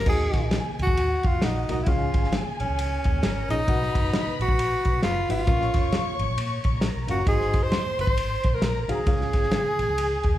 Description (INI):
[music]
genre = uptempo 1960s-style soul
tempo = 133 BPM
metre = 4/4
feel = swing 60% on 8ths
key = Eb minor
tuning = A4 = 440 Hz
[part]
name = breathy tenor saxophone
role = melody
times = 0.0-10.4 s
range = Db4 to C5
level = -27 LUFS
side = equal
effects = none
[part]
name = vintage muted fingered electric bass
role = bass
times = 0.0-10.4 s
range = F1 to Bb2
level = -29 LUFS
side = equal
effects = none
[part]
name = dark studio string section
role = second line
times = 0.1-10.4 s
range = Gb4 to Db6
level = -33 LUFS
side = left 2 dB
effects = none
[part]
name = reed electric piano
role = accompaniment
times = 0.1-9.8 s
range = Ab2 to F#5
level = -32 LUFS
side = left 2 dB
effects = overdrive, fast tremolo
[part]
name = warm soul drum kit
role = drums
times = 0.1-10.3 s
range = crash cymbal, hi-hat, kick drum, ride cymbal, snare drum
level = -25 LUFS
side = equal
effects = none
[part]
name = congas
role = percussion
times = 0.1-10.4 s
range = none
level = -38 LUFS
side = right 2 dB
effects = none
[sound]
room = moderate large studio reverb, RT60 1.4 s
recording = band playing live in one room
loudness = -22 LUFS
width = side -13 dB against mid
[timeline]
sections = 0.1-10.4 A section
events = none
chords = 0.1 Ebm; 1.9 Db; 3.7 B; 5.5 Bbm; 7.3 Ab7; 9.1 Db